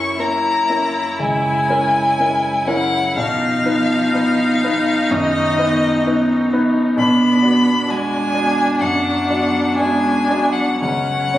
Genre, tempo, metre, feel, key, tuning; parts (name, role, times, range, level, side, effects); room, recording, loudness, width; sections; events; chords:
classical, slow romantic movement for piano quartet; 57-67 BPM; 4/4; rubato; A4 = 440 Hz
rich violin; melody; 0.0-11.4 s; D#5 to C#6; -19 LUFS; left 2 dB
warm cello; second line; 0.0-11.4 s; D#3 to C#4; -23 LUFS; right 2 dB
rich viola; accompaniment; 0.0-11.4 s; C#4 to E4; -23 LUFS; right 1 dB
warm concert grand piano; accompaniment; 0.0-11.4 s; B1 to D5; -19 LUFS; left 1 dB
wet recital hall reverb, RT60 1.4 s; recorded on a phone in the room, studio ambience, compression; -14 LUFS; side -13 dB against mid
0.0-11.4 A section
0.0 F#7; 3.2 B; 7.0 Bm; 10.8 N.C.